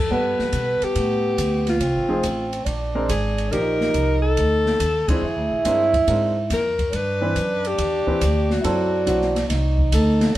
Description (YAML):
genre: jazz, small-group swing and bop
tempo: 140 BPM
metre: 4/4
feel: swing 67% on 8ths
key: unclear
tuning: A4 = 441 Hz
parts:
  - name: clear alto saxophone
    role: melody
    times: 0.0-10.3 s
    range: F4 to B4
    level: -23 LUFS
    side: left 2 dB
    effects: none
  - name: trombone with cup mute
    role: second line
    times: 0.1-10.4 s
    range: B3 to E4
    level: -24 LUFS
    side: right 4 dB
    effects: none
  - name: warm baby grand piano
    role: accompaniment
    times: 0.1-9.3 s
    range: E3 to F#5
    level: -26 LUFS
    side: equal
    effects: none
  - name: upright bass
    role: bass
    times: 0.1-10.4 s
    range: F1 to B2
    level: -23 LUFS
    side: equal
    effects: none
  - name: open jazz drum kit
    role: drums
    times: 0.1-10.4 s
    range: hi-hat, kick drum, ride cymbal, snare drum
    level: -28 LUFS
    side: equal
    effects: none
room: light reverb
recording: band playing live in one room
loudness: -18 LUFS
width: side -14 dB against mid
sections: 0.1-10.4 A section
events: band accent 5.0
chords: 0.1 Gmaj9; 1.8 Fm7; 2.7 Bb9; 3.5 Ebmaj9; 5.2 Bb9; 6.9 Cmaj9; 8.6 F#m7b5; 9.5 Cm69